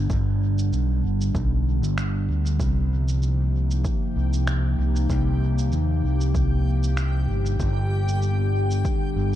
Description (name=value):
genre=ambient dub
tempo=96 BPM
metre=4/4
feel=swing 55% on 16ths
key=C minor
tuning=A4 = 440 Hz
part: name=warbly tape-like pad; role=sustained chords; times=0.0-9.4 s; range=C3 to G4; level=-28 LUFS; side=left 1 dB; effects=chorus, built-in reverb
part: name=overdriven fingered electric bass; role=bass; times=0.0-9.4 s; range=G1 to Eb2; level=-22 LUFS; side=equal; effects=none
part: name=electronic kick drum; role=drums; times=0.1-9.0 s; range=none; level=-26 LUFS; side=equal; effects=overdrive
part: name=electronic shaker and finger snaps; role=drums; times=0.1-9.0 s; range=none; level=-37 LUFS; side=right 1 dB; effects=dub echo
part: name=backwards swelling texture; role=texture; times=4.2-9.4 s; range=G4 to G5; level=-36 LUFS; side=left 1 dB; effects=built-in reverb
room=little or no reverb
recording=dark, warm production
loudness=-20 LUFS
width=side -12 dB against mid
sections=0.0-9.4 A section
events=none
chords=0.0 G; 2.6 Cm7; 7.6 G